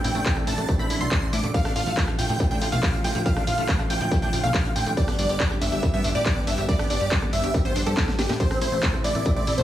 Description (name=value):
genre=uplifting trance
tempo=140 BPM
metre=4/4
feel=straight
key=unclear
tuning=A4 = 441 Hz
part: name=big supersaw lead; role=melody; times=0.0-9.6 s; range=G4 to D6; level=-29 LUFS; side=equal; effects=sidechain pumping, tape echo
part: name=analog pluck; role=second line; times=0.0-9.6 s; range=G4 to D6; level=-34 LUFS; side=right 1 dB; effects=chorus, sidechain pumping, digital delay
part: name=lush unison pad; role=sustained chords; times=0.0-9.6 s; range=C3 to G4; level=-32 LUFS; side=left 1 dB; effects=chorus, vintage 12-bit sampler grit, sidechain pumping
part: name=liquid acid bass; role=arpeggios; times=0.0-9.6 s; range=G3 to G4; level=-34 LUFS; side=right 3 dB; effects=analog chorus, sidechain pumping, digital delay
part: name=plucky analog bass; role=bass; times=0.0-9.6 s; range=G1 to A2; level=-28 LUFS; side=equal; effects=sidechain pumping
part: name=techno drum kit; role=drums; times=0.0-9.6 s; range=handclaps, hi-hat, ride cymbal, rim click, snare drum, tambourine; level=-30 LUFS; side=equal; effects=sidechain pumping on hats, sidechain pumping on cymbals, sidechain pumping on perc
part: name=electronic kick drum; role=drums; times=0.3-9.3 s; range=none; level=-24 LUFS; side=equal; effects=distortion
room=little or no reverb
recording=small room ambience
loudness=-21 LUFS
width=side -12 dB against mid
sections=0.0-9.6 A section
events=drum fill 8.0-8.4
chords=0.0 Am; 1.5 Dm/A; 5.0 G; 8.4 Am